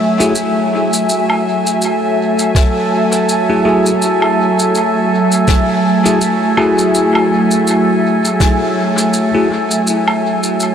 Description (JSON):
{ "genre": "ambient dub", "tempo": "82 BPM", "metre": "4/4", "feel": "swing 57% on 16ths", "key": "F# minor", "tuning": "A4 = 440 Hz", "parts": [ { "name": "warbly tape-like pad", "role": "sustained chords", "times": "0.0-10.7 s", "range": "F#3 to G#5", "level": "-14 LUFS", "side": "equal", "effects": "chorus, built-in reverb, phaser" }, { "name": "bell-like tine electric piano", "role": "stabs", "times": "0.2-9.5 s", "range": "A3 to G#4", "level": "-17 LUFS", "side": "left 1 dB", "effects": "vintage 12-bit sampler grit, dub echo" }, { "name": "shaker, woodblock and snare drum", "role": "drums", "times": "0.2-10.7 s", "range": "none", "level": "-21 LUFS", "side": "equal", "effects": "dub echo" }, { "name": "drifting glass-harmonics texture", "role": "texture", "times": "2.0-10.7 s", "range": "A4", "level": "-21 LUFS", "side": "right 2 dB", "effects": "chorus, built-in reverb" }, { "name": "electronic kick drum", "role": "drums", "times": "2.5-8.6 s", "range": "none", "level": "-13 LUFS", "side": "equal", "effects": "none" } ], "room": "wet huge ambient reverb, RT60 7.4 s", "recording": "dreamy mix soaked in reverb", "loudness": "-11 LUFS", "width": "side -8 dB against mid", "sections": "0.0-10.7 A section", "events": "none", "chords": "0.0 F#m9", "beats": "0.36 | 1.09 1.82 2.55 3.28 | 4.01 4.75 5.48 6.21 | 6.94 7.67 8.40 9.14 | 9.87 10.60" }